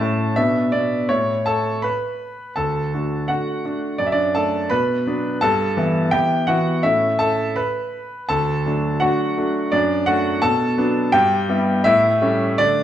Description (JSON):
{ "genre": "classical-period piano sonatina", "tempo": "84 BPM", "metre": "2/4", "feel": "straight", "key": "D major", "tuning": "A4 = 440 Hz", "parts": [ { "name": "warm concert grand piano", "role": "solo", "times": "0.0-12.8 s", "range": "D2 to B5", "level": "-17 LUFS", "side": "equal", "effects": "none" } ], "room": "wet recital hall reverb, RT60 1.3 s", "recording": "recorded in a church or concert hall", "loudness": "-17 LUFS", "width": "side -11 dB against mid", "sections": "0.0-2.6 A section; 2.6-12.8 B section", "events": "none", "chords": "0.4 Bm; 1.1 A; 2.6 D; 4.0 D/F#; 4.7 Bm; 5.4 Em/G; 6.8 A; 8.3 D; 9.7 D/F#; 10.4 Bm; 11.1 Em/G; 11.9 A7" }